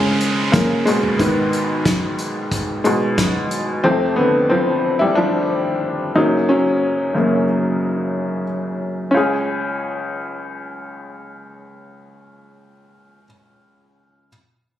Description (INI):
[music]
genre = piano-driven pop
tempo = 91 BPM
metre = 4/4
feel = straight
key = Db mixolydian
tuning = A4 = 440 Hz
[part]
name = bright upright piano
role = accompaniment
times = 0.0-14.3 s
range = Db2 to Ab4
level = -17 LUFS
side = left 1 dB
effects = none
[part]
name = downlifter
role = sound effects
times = 0.0-3.8 s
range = none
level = -28 LUFS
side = right 2 dB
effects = none
[part]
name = natural country drum kit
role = drums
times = 0.2-3.7 s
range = hi-hat, kick drum, snare drum, toms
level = -21 LUFS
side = equal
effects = none
[sound]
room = moderate large studio reverb, RT60 1.2 s, small room ambience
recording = recorded on a phone in the room, studio reverb, compression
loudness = -16 LUFS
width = side -12 dB against mid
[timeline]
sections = 0.0-9.1 A section; 9.1-11.8 B section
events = upright piano solo 0.0-9.1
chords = 0.0 Db; 1.2 Abm; 3.8 F; 6.2 Gb; 9.1 Db